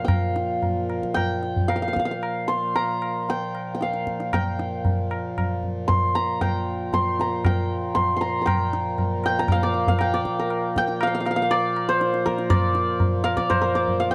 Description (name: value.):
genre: indian classical, Hindustani.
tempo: 111-122 BPM.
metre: 4/4.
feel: straight.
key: Bb raga bhupali.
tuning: A4 = 441 Hz.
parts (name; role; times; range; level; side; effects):
santur; melody; 0.0-14.1 s; Bb4 to C6; -26 LUFS; equal; none.
pedal harmonium; drone; 0.0-14.1 s; Bb2 to F3; -31 LUFS; equal; none.
tabla; percussion; 0.1-14.1 s; none; -28 LUFS; equal; none.
room: light reverb.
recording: dark, warm production.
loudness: -23 LUFS.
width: mono.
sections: 0.0-8.5 A section; 8.5-14.1 B section.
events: speeding up 0.0-14.1.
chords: none.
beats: | 0.07 0.61 1.14 1.68 | 2.21 2.74 3.27 3.80 | 4.32 4.85 5.37 5.89 | 6.41 6.93 7.44 7.96 | 8.47 8.98 9.49 9.99 | 10.50 11.01 11.51 12.01 | 12.51 13.01 13.50 13.99.